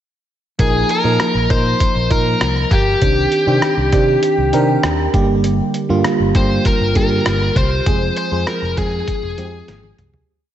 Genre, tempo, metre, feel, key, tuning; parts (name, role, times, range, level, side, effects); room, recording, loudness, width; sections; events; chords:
1980s-style pop; 99 BPM; 4/4; straight; F dorian; A4 = 440 Hz
biting lead guitar; melody; 0.6-9.9 s; G4 to C5; -18 LUFS; left 2 dB; overdrive, analog delay
FM electric piano; accompaniment; 0.6-10.3 s; D3 to Bb4; -18 LUFS; right 2 dB; chorus
picked electric bass; bass; 0.6-10.2 s; F1 to C3; -20 LUFS; equal
lo-fi sampler-style drum kit; drums; 0.6-10.3 s; hi-hat, kick drum, rim click, snare drum, toms; -19 LUFS; equal
moderate lush hall reverb, RT60 1.8 s; dreamy mix soaked in reverb, nothing above 8.0 kHz; -13 LUFS; side -11 dB against mid
0.6-10.3 verse
fade-out 7.9-10.3; drum fill 9.7-10.3
0.6 Bbsus4; 3.0 Cmadd9; 5.1 Gm; 7.9 Fm